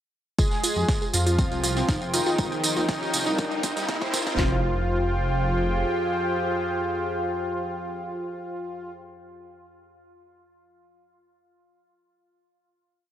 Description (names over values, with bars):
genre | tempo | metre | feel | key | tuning
melodic techno | 120 BPM | 4/4 | straight | F minor | A4 = 442 Hz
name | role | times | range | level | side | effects
soft supersaw | melody | 0.4-8.9 s | Eb3 to Ab4 | -29 LUFS | equal | sidechain pumping, analog delay
evolving wavetable pad | sustained chords | 1.1-8.9 s | F4 to G5 | -33 LUFS | equal | chorus, built-in reverb, sidechain pumping
wide unison pluck | arpeggios | 0.4-4.6 s | G3 to Ab5 | -31 LUFS | equal | sidechain pumping, analog delay
dark detuned saw bass | bass | 0.4-5.8 s | Eb1 to F2 | -27 LUFS | equal | tube saturation, sidechain pumping
analog drone | drone | 2.1-8.9 s | F2 to F3 | -38 LUFS | left 1 dB | chorus, sidechain pumping
dusty soul sampler-style drum kit | drums | 0.4-4.3 s | hi-hat, snare drum | -39 LUFS | equal | none
house drum kit | drums | 0.4-4.5 s | handclaps, kick drum, snare drum | -25 LUFS | equal | none
tambourine | percussion | 0.4-4.4 s | none | -30 LUFS | right 2 dB | none
riser | sound effects | 1.6-4.4 s | none | -34 LUFS | equal | none
airy breathy pad | texture | 0.4-9.1 s | C4 to C6 | -35 LUFS | left 1 dB | chorus, sidechain pumping
electronic hi-hat | drums | 0.6-4.2 s | none | -30 LUFS | right 2 dB | none
room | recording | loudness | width
light reverb, digital ambience | dry, gritty hardware recording, high-pass filter | -23 LUFS | side -11 dB against mid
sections
0.4-4.4 build; 4.4-8.4 final chord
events
build-up 0.4-4.4; filter sweep on synth arpeggio sound 0.4-4.4; filter sweep 0.4-4.4; riser 1.6-4.4; drum fill 2.4-4.4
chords
0.4 Fmadd9; 2.4 Eb7; 3.4 Cm7; 4.4 Fmadd9